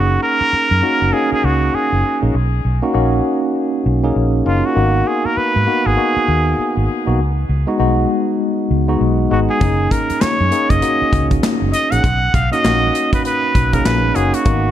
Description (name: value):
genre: R&B, new jack swing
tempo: 99 BPM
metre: 4/4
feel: swing 61% on 16ths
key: F# major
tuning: A4 = 440 Hz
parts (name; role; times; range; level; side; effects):
- trumpet with straight mute; melody; 0.0-14.7 s; E#4 to F#5; -18 LUFS; right 1 dB; ping-pong delay
- tine electric piano; accompaniment; 0.0-14.7 s; G#3 to G#4; -18 LUFS; equal; medium stereo tremolo
- vintage muted fingered electric bass; bass; 0.0-14.7 s; F#1 to G#2; -17 LUFS; equal; none
- modern studio drum kit; drums; 9.6-14.6 s; handclaps, hi-hat, kick drum, snare drum; -19 LUFS; equal; gated reverb
room: moderate plate reverb, RT60 2.3 s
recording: bright 1980s-style digital production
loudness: -14 LUFS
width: side -11 dB against mid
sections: 0.0-14.7 A section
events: none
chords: 0.0 F#69; 2.3 Bmaj7; 4.8 G#m7; 7.2 C#7sus4; 9.6 F#69; 12.0 Bmaj7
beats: 0.52 1.13 1.73 | 2.34 2.94 3.55 4.16 | 4.76 5.37 5.97 6.58 | 7.19 7.79 8.40 9.01 | 9.61 10.22 10.82 11.43 | 12.04 12.64 13.25 13.85 | 14.46